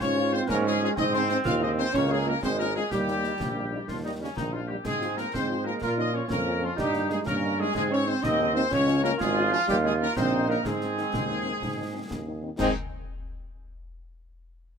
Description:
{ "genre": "military-style march for wind band", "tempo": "124 BPM (dotted quarters)", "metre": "6/8", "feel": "straight", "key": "Ab major", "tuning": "A4 = 441 Hz", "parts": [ { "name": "mellow trumpet section", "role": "melody", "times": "0.0-12.7 s", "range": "Db4 to F5", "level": "-32 LUFS", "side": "left 3 dB", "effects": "none" }, { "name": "clear woodwind section", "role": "second line", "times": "0.0-12.7 s", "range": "Db4 to F5", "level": "-34 LUFS", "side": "left 2 dB", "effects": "none" }, { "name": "mellow euphonium", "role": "second line", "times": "0.0-12.7 s", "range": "Db3 to F4", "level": "-30 LUFS", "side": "right 2 dB", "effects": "none" }, { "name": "warm trombone section", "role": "sustained chords", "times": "0.0-12.7 s", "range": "Eb3 to F4", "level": "-32 LUFS", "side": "right 2 dB", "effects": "none" }, { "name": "warm tuba", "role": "bass", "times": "0.0-12.7 s", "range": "Ab1 to Bb2", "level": "-30 LUFS", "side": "right 2 dB", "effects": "none" }, { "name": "concert snare drum, concert bass drum and clash cymbals", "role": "drums", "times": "0.0-12.8 s", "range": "none", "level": "-36 LUFS", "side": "left 1 dB", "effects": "none" }, { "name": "mellow French horn section", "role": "accompaniment", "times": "0.2-12.7 s", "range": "Eb3 to F4", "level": "-34 LUFS", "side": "left 6 dB", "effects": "none" } ], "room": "light reverb", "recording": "minimal, uncompressed stereo recording", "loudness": "-24 LUFS", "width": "side -6 dB against mid", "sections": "0.0-12.6 A section", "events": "none", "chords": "0.0 Db/Ab; 1.0 Ab; 1.9 Db; 2.9 Eb; 4.8 Fm/Ab; 5.8 Bbm; 6.8 Eb/G; 7.8 Ab; 8.7 Db; 9.7 Eb5; 10.7 Ab" }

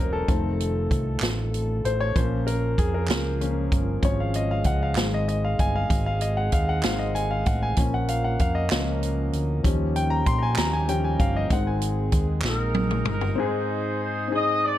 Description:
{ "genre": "slow gospel", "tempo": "64 BPM (dotted quarters)", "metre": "6/8", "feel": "straight", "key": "unclear", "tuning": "A4 = 439 Hz", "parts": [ { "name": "warm concert grand piano", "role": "accompaniment", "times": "0.0-14.8 s", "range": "Ab2 to C6", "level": "-27 LUFS", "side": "left 2 dB", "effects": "none" }, { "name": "clear French horn section", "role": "sustained chords", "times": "0.0-13.4 s", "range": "Ab3 to Bb4", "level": "-35 LUFS", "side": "right 2 dB", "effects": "none" }, { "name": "fingered electric bass", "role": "bass", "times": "0.0-13.3 s", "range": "Fb1 to Bb2", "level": "-26 LUFS", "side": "equal", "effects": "none" }, { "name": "swinging big-band drum kit", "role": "drums", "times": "0.3-13.4 s", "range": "hi-hat, kick drum, snare drum, toms", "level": "-26 LUFS", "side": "equal", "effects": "none" }, { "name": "group handclap", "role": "percussion", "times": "1.2-12.7 s", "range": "none", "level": "-33 LUFS", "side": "right 4 dB", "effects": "none" }, { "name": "warm horn section", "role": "melody", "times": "12.5-14.8 s", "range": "Eb4 to Eb5", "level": "-26 LUFS", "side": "equal", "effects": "none" } ], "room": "light reverb, studio reverb", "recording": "dark, warm production", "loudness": "-22 LUFS", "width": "side -13 dB against mid", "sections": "0.0-13.4 A section; 13.4-14.8 B section", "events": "grand piano solo 0.0-13.4; drum fill 12.4-13.4", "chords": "0.3 F7; 2.2 Bbm; 4.0 Db/Ab; 5.0 Ab; 7.8 Bbm; 9.6 Eb7; 11.5 Ab" }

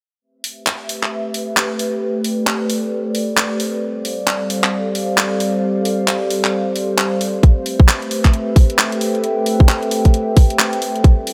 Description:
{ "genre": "UK garage, two-step garage", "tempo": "133 BPM", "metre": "4/4", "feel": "swing 61% on 16ths", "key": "A minor", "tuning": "A4 = 440 Hz", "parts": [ { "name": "airy breathy pad", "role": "sustained chords", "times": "0.9-11.3 s", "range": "G3 to F5", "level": "-23 LUFS", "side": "equal", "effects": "chorus, sidechain pumping" }, { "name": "warbly tape-like pad", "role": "texture", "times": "0.2-11.3 s", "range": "C4 to G5", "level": "-28 LUFS", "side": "equal", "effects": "chorus, built-in reverb, sidechain pumping" }, { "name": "house drum kit", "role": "drums", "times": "0.4-11.3 s", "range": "handclaps, hi-hat", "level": "-21 LUFS", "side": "equal", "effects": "none" }, { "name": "electronic kick drum", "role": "drums", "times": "7.4-11.2 s", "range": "none", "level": "-12 LUFS", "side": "equal", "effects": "none" } ], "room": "light reverb", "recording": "none", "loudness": "-17 LUFS", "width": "mono", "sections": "0.2-11.3 A section", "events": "fade-in on ambient pad 0.2-11.3; filter sweep on analog synth pad 0.2-11.3", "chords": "0.2 Am7; 3.8 G7sus4; 7.4 Am7" }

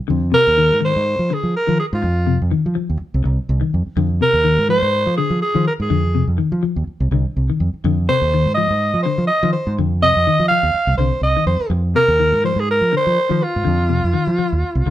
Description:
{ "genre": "afrobeat", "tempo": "124 BPM", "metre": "4/4", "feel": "swing 55% on 16ths", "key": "F dorian", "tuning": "A4 = 440 Hz", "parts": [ { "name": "clean electric guitar", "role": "arpeggios", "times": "0.1-14.9 s", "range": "C3 to F3", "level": "-22 LUFS", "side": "left 6 dB", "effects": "none" }, { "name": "fingered electric bass", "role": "bass", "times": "0.1-14.9 s", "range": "C2 to F3", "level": "-19 LUFS", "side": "right 1 dB", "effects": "none" }, { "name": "raspy alto saxophone", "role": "melody", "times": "0.3-14.9 s", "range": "F4 to F5", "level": "-17 LUFS", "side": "right 1 dB", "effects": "none" } ], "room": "moderate studio reverb, RT60 0.8 s", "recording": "band playing live in one room", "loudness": "-15 LUFS", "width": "side -13 dB against mid", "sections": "0.1-14.9 A section", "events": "none", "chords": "0.1 Fm7" }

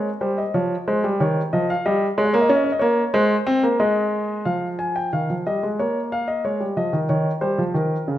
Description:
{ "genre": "classical, baroque-style two-part invention for grand piano", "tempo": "92 BPM", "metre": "4/4", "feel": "straight", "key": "Ab major", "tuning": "A4 = 444 Hz", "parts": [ { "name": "dark grand piano", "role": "solo", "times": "0.0-8.2 s", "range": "Db3 to Ab5", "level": "-19 LUFS", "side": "equal", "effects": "none" } ], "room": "wet recital hall reverb, RT60 1.4 s", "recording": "none", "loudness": "-19 LUFS", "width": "side -13 dB against mid", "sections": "0.0-4.5 A section; 4.5-8.2 B section", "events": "none", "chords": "0.0 Ab; 0.5 Db/F; 1.8 Eb7/G; 3.1 Ab; 4.5 Fm; 5.8 Bbm; 7.1 Eb" }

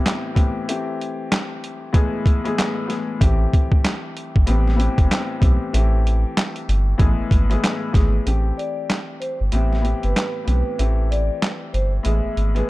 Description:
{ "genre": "hip hop, boom-bap hip-hop", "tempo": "95 BPM", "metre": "4/4", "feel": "swing 61% on 16ths", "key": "A minor", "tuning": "A4 = 439 Hz", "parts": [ { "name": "clear upright piano", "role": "accompaniment", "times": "0.0-12.7 s", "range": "A2 to G#4", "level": "-26 LUFS", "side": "left 3 dB", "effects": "cassette tape, high-pass filter, low-pass filter" }, { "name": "boom bap sampler-style drum kit", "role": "drums", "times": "0.1-12.7 s", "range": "handclaps, hi-hat, kick drum, snare drum", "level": "-19 LUFS", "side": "equal", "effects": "none" }, { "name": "soft dub sub bass", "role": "bass", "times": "3.2-12.6 s", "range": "G1 to B1", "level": "-18 LUFS", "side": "equal", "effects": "none" }, { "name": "vibraphone with soft mallets", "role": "melody", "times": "8.6-12.7 s", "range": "B4 to E5", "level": "-28 LUFS", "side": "equal", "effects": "high-pass filter, low-pass filter, digital delay" } ], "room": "small room ambience", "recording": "dark, warm production", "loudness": "-18 LUFS", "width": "side -19 dB against mid", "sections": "0.0-8.3 A section; 8.3-12.7 B section", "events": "break 8.3-12.7", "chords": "0.0 Cmaj7/A; 0.7 Am7; 1.9 E/A; 3.2 Am7; 4.5 Cmaj7; 5.7 Am7; 7.0 E; 8.3 Am7; 9.5 Cmaj7; 10.8 Am7; 12.1 E" }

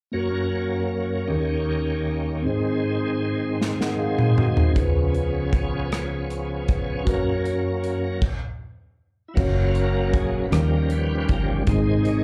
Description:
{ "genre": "slow gospel", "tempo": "52 BPM (dotted quarters)", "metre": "6/8", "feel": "straight", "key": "F# major", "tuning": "A4 = 440 Hz", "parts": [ { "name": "mellow tine electric piano", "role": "accompaniment", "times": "0.1-12.2 s", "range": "C#2 to F#5", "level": "-27 LUFS", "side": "equal", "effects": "slapback echo" }, { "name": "bright tonewheel organ", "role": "sustained chords", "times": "0.1-12.2 s", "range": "B#2 to C#5", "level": "-30 LUFS", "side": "equal", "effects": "fast rotary speaker, overdrive, chorus vibrato" }, { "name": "modern studio drum kit", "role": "drums", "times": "3.6-12.2 s", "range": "crash cymbal, hi-hat, kick drum, rim click, snare drum, toms", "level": "-26 LUFS", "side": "equal", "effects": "none" }, { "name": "fingered electric bass", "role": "bass", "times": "9.4-12.2 s", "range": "F#1 to D#2", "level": "-25 LUFS", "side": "equal", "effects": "none" } ], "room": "light reverb", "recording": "live gig heard through the venue's PA, club reverb", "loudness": "-23 LUFS", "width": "mono", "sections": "0.1-9.4 A section; 9.4-12.2 B section", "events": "drum fill 3.6-4.8; stop 8.2-9.4; tonewheel organ solo 9.4-12.2", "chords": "0.1 F#; 1.3 D#7; 2.5 G#; 4.8 C#7; 7.1 F#; 10.5 D#7; 11.7 G#" }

